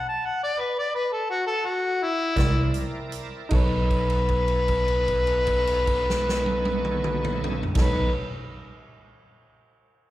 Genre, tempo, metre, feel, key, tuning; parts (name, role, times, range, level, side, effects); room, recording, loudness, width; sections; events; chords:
slow blues; 51-59 BPM (dotted quarters); 12/8; straight; B mixolydian; A4 = 439 Hz
mellow harmonica; melody; 0.0-8.1 s; E4 to A5; -25 LUFS; left 1 dB; overdrive, plate reverb, slapback echo
warm upright piano; accompaniment; 2.4-8.1 s; D#4 to D5; -35 LUFS; right 3 dB; plate reverb, slapback echo
bright tonewheel organ; sustained chords; 2.4-8.1 s; B3 to D5; -35 LUFS; right 2 dB; slow rotary speaker, overdrive, chorus vibrato, plate reverb
bell-like tine electric piano; bass; 2.4-8.1 s; B1 to C2; -26 LUFS; equal; medium stereo tremolo
swinging big-band drum kit; drums; 2.4-8.0 s; crash cymbal, hi-hat, kick drum, snare drum, toms; -28 LUFS; equal
moderate club reverb, RT60 0.8 s; live gig heard through the venue's PA, recital hall reverb; -22 LUFS; side -15 dB against mid
0.0-3.5 A section; 3.5-8.2 B section
slowing down 0.0-3.5; stop 0.0-2.4; held note 3.5-7.8
0.0 B7(no3) (rootless); 2.4 C9; 3.5 B9